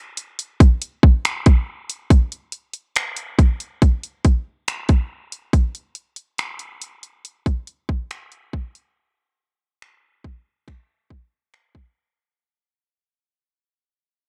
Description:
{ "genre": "R&B", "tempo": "70 BPM", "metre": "4/4", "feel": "straight", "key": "none", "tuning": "none", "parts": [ { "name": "trap drum kit", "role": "drums", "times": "0.2-11.9 s", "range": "finger snaps, hi-hat, kick drum", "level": "-18 LUFS", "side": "equal", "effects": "overdrive, vintage 12-bit sampler grit" } ], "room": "little or no reverb", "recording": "none", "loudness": "-20 LUFS", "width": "mono", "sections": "0.0-12.4 A section", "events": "fade-out 0.0-12.4", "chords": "none" }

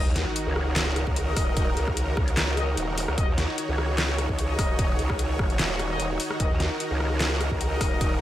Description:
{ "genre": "heavy wobble dubstep", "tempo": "149 BPM", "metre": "4/4", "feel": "swing 53% on 16ths, half-time", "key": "Eb minor", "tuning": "A4 = 442 Hz", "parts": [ { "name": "supersaw pad", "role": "sustained chords", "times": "0.0-8.2 s", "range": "Eb3 to Db5", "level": "-30 LUFS", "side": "right 1 dB", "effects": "sidechain pumping" }, { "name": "warm brass ensemble", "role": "stabs", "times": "0.0-8.1 s", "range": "Eb4 to Eb5", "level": "-35 LUFS", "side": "left 3 dB", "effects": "digital delay" }, { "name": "growl bass", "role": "bass", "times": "0.0-8.2 s", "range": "Eb1 to Eb2", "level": "-27 LUFS", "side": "equal", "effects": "chorus, overdrive" }, { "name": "sub drop", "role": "sound effects", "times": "0.0-1.6 s", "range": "none", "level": "-35 LUFS", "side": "equal", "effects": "none" }, { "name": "dubstep drum kit", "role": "drums", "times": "0.2-8.1 s", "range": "handclaps, hi-hat, rim click, snare drum", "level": "-29 LUFS", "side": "equal", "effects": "none" }, { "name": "electronic kick drum", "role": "drums", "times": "1.1-8.1 s", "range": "none", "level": "-26 LUFS", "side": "equal", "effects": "none" } ], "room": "light reverb", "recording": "none", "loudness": "-23 LUFS", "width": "side -13 dB against mid", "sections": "0.0-8.2 A section", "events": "impact 0.0-1.6", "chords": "0.0 Ebm" }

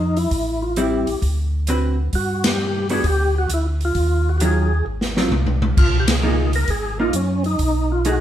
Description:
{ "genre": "soul jazz organ trio", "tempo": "132 BPM", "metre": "4/4", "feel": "swing 68% on 8ths", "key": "unclear", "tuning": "A4 = 440 Hz", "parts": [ { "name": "percussive tonewheel organ", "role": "melody", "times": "0.0-8.2 s", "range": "Db4 to Bb4", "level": "-23 LUFS", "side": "equal", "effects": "slow rotary speaker, overdrive, chorus vibrato" }, { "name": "mellow tonewheel organ", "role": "bass", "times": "0.0-8.2 s", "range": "Ab1 to G2", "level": "-21 LUFS", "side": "equal", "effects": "slow rotary speaker" }, { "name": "swinging big-band drum kit", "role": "drums", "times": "0.2-8.2 s", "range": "crash cymbal, hi-hat, kick drum, ride cymbal, snare drum, toms", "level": "-22 LUFS", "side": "equal", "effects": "none" }, { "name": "vintage hollow-body jazz guitar", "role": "accompaniment", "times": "0.8-8.2 s", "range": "D3 to B4", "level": "-22 LUFS", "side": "right 1 dB", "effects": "none" } ], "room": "moderate stone room reverb, RT60 1.0 s", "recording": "band playing live in one room", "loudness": "-17 LUFS", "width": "side -11 dB against mid", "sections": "0.0-8.2 A section", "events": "band accent 2.4, 6.0; drum fill 4.9-5.8", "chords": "0.3 Am7; 1.2 D6; 2.1 Gmaj7(no3); 4.0 Ebm9; 4.9 Ab6; 5.8 Db69; 7.6 B6" }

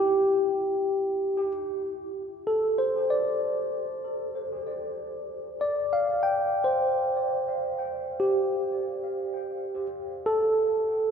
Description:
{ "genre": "ambient", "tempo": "58 BPM", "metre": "4/4", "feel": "straight", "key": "unclear", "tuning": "A4 = 439 Hz", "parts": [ { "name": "tine electric piano", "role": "solo", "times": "0.0-11.1 s", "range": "G4 to G5", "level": "-25 LUFS", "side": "equal", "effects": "tape echo" } ], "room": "wet lush hall reverb, RT60 2.6 s", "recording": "dark, warm production", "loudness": "-25 LUFS", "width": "side -7 dB against mid", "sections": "0.0-1.4 A section; 1.4-11.1 B section", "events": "none", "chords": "0.0 Em; 1.4 Amadd11; 5.6 G5; 9.7 N.C." }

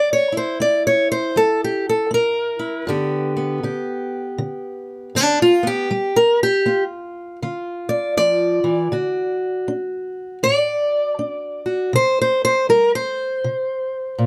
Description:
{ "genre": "blues", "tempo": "79 BPM", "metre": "4/4", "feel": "swing 62% on 8ths", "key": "unclear", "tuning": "A4 = 440 Hz", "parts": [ { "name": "fingerpicked steel-string acoustic guitar", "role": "solo", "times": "0.0-14.3 s", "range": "G2 to D5", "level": "-20 LUFS", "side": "equal", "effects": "none" } ], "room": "light reverb", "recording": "close, detailed microphones", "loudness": "-20 LUFS", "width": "mono", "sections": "0.0-14.3 A section", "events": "steel-string acoustic guitar solo 0.0-14.3", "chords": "0.0 C7; 2.9 G7; 8.9 D; 11.9 C5" }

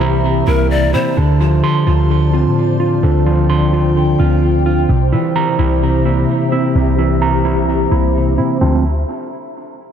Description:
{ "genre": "hip hop", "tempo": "129 BPM", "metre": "4/4", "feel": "half-time", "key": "D minor", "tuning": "A4 = 439 Hz", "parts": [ { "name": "mellow tine electric piano", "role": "accompaniment", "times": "0.0-8.8 s", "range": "C3 to D4", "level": "-17 LUFS", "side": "left 1 dB", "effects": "medium stereo tremolo, low-pass filter" }, { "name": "glassy FM pad", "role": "sustained chords", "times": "0.0-8.8 s", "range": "F4 to Bb5", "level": "-22 LUFS", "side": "left 4 dB", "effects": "ensemble chorus, built-in reverb, phaser, low-pass filter" }, { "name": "mellow electric guitar", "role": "arpeggios", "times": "0.0-8.8 s", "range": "C3 to C6", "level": "-18 LUFS", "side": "right 5 dB", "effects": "spring reverb, low-pass filter, digital delay" }, { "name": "clean 808-style bass", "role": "bass", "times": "0.0-9.0 s", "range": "C2 to C3", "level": "-16 LUFS", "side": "equal", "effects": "none" }, { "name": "breathy hollow large pan pipes", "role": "second line", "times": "0.5-1.2 s", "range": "Bb4 to D5", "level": "-21 LUFS", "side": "left 4 dB", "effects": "digital delay" } ], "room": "light reverb, digital ambience", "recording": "none", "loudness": "-12 LUFS", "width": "side -8 dB against mid", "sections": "0.0-1.2 A section; 1.2-8.6 B section; 8.6-9.9 C section", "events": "filter sweep 1.2-8.6", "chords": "0.0 C7; 1.2 Dm7; 4.9 C7; 8.6 Dm7" }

